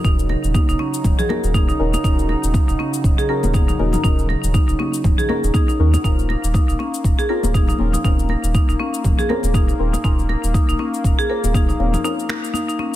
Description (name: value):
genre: afro house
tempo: 120 BPM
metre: 4/4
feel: swing 57% on 16ths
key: Eb dorian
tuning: A4 = 440 Hz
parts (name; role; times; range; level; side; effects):
- warm analog pad; sustained chords; 0.0-13.0 s; Db3 to Eb4; -27 LUFS; right 1 dB; chorus, vintage 12-bit sampler grit, sidechain pumping
- marimba with hard mallets; arpeggios; 0.0-12.9 s; Db4 to Bb4; -23 LUFS; equal; sidechain pumping, ping-pong delay
- deep mellow chord stab; stabs; 0.0-13.0 s; C4 to Bb4; -28 LUFS; left 4 dB; chorus, phaser, sidechain pumping, ping-pong delay
- warm sub bass; bass; 0.0-12.0 s; Eb1 to Eb2; -20 LUFS; equal; sidechain pumping
- electronic cabasa and finger snaps; drums; 0.0-13.0 s; none; -31 LUFS; left 6 dB; none
- electronic kick drum; drums; 0.0-11.7 s; none; -17 LUFS; equal; none
- congas; percussion; 0.3-12.9 s; none; -27 LUFS; left 4 dB; none
room: little or no reverb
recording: none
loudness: -16 LUFS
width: side -14 dB against mid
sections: 0.0-13.0 A section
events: break 12.0-13.0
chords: 0.0 Ebm7; 6.0 Bbmadd9/Eb